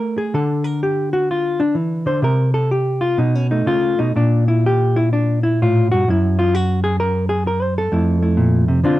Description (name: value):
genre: solo jazz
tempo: 127 BPM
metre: 4/4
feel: swing 66% on 8ths, rubato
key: F major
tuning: A4 = 440 Hz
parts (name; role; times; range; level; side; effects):
- hollow-body jazz guitar; solo; 0.0-9.0 s; F2 to C5; -15 LUFS; equal; none
room: light reverb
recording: dark, warm production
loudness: -15 LUFS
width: side -15 dB against mid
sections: 0.0-9.0 A section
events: hollow-body jazz guitar solo 0.0-9.0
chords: 0.3 Dsus2; 2.2 N.C.; 3.2 Bsus2; 4.1 Gm13; 6.1 N.C.; 7.9 Fmaj7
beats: | 0.33 0.80 1.27 1.75 | 2.22 2.69 3.17 3.66 | 4.15 4.63 5.12 5.60 | 6.08 6.55 7.00 7.46 | 7.92 8.38 8.84